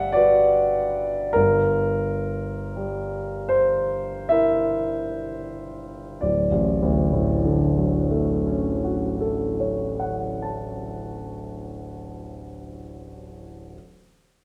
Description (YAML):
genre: classical, impressionist solo piano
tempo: 29-53 BPM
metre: 3/4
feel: rubato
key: D major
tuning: A4 = 440 Hz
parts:
  - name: warm concert grand piano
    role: solo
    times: 0.0-13.8 s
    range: D1 to A5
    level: -24 LUFS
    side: equal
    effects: none
room: wet recital hall reverb, RT60 1.4 s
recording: none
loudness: -23 LUFS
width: mono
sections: 0.0-6.2 A section; 6.2-11.5 B section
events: slowing down 0.0-6.2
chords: 0.0 Gmaj7; 1.3 Gm6; 6.2 Dmaj7